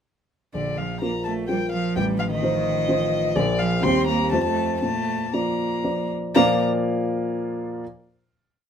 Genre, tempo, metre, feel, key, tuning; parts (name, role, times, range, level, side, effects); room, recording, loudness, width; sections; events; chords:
quick classical-period movement for piano trio; 116-130 BPM; 3/4; rubato; Bb major; A4 = 442 Hz
dark violin; melody; 0.5-6.6 s; D5 to C6; -26 LUFS; left 4 dB
warm cello; second line; 0.5-6.6 s; D3 to C4; -27 LUFS; right 7 dB
dark grand piano; accompaniment; 0.5-7.8 s; A1 to F5; -23 LUFS; left 1 dB
moderate studio reverb, RT60 0.6 s; -21 LUFS; side -8 dB against mid
0.5-6.3 A section; 6.3-7.8 final chord
0.5 Bb5; 2.0 F7/A; 3.4 Bb; 3.8 Cm/Eb; 4.3 F; 4.8 Bb